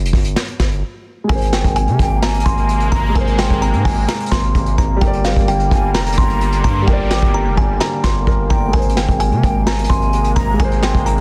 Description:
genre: hip hop, trap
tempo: 129 BPM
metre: 4/4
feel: half-time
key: unclear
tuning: A4 = 440 Hz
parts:
  - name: distorted 808-style bass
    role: bass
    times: 0.0-11.2 s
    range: F1 to C3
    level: -21 LUFS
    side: equal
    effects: distortion
  - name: vintage brush drum kit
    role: drums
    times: 0.1-11.2 s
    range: hi-hat, kick drum, snare drum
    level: -20 LUFS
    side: equal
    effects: none
  - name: dark concert grand piano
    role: accompaniment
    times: 1.2-11.2 s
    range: G3 to G5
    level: -28 LUFS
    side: equal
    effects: low-pass filter
  - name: kalimba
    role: melody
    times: 1.3-11.2 s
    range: F5 to C6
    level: -24 LUFS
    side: equal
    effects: low-pass filter, tape echo
  - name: sweeping resonant pad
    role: sustained chords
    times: 1.3-11.2 s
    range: C3 to Bb3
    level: -27 LUFS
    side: equal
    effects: chorus
  - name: mellow hollow concert flute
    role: second line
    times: 2.0-11.1 s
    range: G5 to D6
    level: -28 LUFS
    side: equal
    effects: tape echo
room: little or no reverb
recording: dense, heavily limited modern master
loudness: -16 LUFS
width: mono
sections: 0.0-1.3 A section; 1.3-11.2 B section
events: break 0.0-1.3; hi-hats muted 6.9-8.7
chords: 0.0 N.C.; 1.3 Abadd9; 5.0 Gm; 8.7 Abadd9

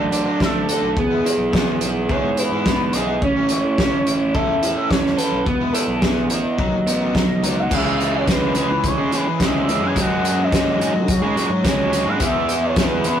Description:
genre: indie rock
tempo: 107 BPM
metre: 4/4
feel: straight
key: E major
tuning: A4 = 441 Hz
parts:
  - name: expressive portamento lead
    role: melody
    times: 0.0-13.2 s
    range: G#4 to G#5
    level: -24 LUFS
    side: equal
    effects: chorus
  - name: crunchy overdriven guitar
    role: riff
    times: 0.0-13.2 s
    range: E3 to A4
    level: -21 LUFS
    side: right 2 dB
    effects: none
  - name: overdriven electric guitar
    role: riff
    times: 0.0-13.2 s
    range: C#3 to G#4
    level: -28 LUFS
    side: left 5 dB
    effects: none
  - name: overdriven picked electric bass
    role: bass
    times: 0.0-13.2 s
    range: E1 to F#3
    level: -27 LUFS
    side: left 1 dB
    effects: none
  - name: loose indie drum kit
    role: drums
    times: 0.1-13.2 s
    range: crash cymbal, hi-hat, kick drum, snare drum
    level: -22 LUFS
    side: equal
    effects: none
room: light reverb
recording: rough rehearsal-room recording, warm saturation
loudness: -16 LUFS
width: side -9 dB against mid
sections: 0.0-7.7 A section; 7.7-13.2 B section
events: none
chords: 0.0 D; 1.0 E; 3.2 A; 5.5 E; 6.6 B; 7.7 C#m; 10.0 F#sus2; 12.2 E

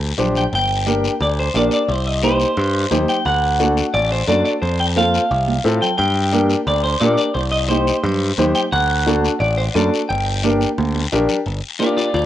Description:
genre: latin, cumbia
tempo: 176 BPM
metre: 4/4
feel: straight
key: G minor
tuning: A4 = 440 Hz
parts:
  - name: clean electric guitar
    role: melody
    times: 0.0-12.3 s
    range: F4 to G5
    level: -20 LUFS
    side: equal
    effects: spring reverb, cassette tape
  - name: modern bright picked electric bass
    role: bass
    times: 0.0-12.3 s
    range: G1 to Bb2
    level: -20 LUFS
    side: equal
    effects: none
  - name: warm upright piano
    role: accompaniment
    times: 0.2-12.0 s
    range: C4 to C5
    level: -19 LUFS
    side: left 2 dB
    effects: none
  - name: congas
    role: percussion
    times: 0.2-12.3 s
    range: none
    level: -25 LUFS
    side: right 7 dB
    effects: none
  - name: guiro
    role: percussion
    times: 0.2-12.3 s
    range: none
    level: -28 LUFS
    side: left 6 dB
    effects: none
room: light reverb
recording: home recording on cassette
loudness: -15 LUFS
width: side -12 dB against mid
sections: 0.5-11.5 A section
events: drum fill 0.0-0.5, 5.5-6.0, 10.8-11.5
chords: 0.0 Gm; 1.9 Cm; 3.3 D; 4.6 F; 6.0 Gm; 7.4 Cm; 8.7 D; 10.1 Gm

